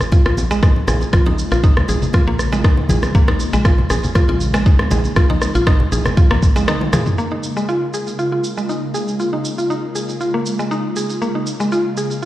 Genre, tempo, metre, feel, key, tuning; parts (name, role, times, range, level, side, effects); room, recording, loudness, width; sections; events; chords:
afro house; 119 BPM; 4/4; swing 53% on 16ths; Bb minor; A4 = 437 Hz
ethereal airy pad; sustained chords; 0.1-12.3 s; Db3 to F4; -25 LUFS; equal; ensemble chorus, built-in reverb, phaser, sidechain pumping
deep house drum kit; drums; 0.0-12.3 s; rim click, shaker, toms; -23 LUFS; equal
congas; percussion; 0.0-7.0 s; -23 LUFS; left 1 dB
mallet-like synth pluck; arpeggios; 0.1-12.3 s; Ab3 to Ab4; -21 LUFS; equal; chorus, sidechain pumping, digital delay
electronic kick drum; drums; 0.1-6.5 s; -13 LUFS; equal
bongos; percussion; 0.1-7.0 s; -29 LUFS; right 2 dB
woody FM bass; bass; 0.3-6.7 s; Bb1 to Bb2; -20 LUFS; equal; sidechain pumping
light reverb, digital ambience; played on a big sound system in a bare room, large studio reverb; -14 LUFS; side -14 dB against mid
0.0-7.2 A section; 7.2-12.3 B section
break 6.7-7.2; drum fill 6.7-7.2
0.0 Bbm7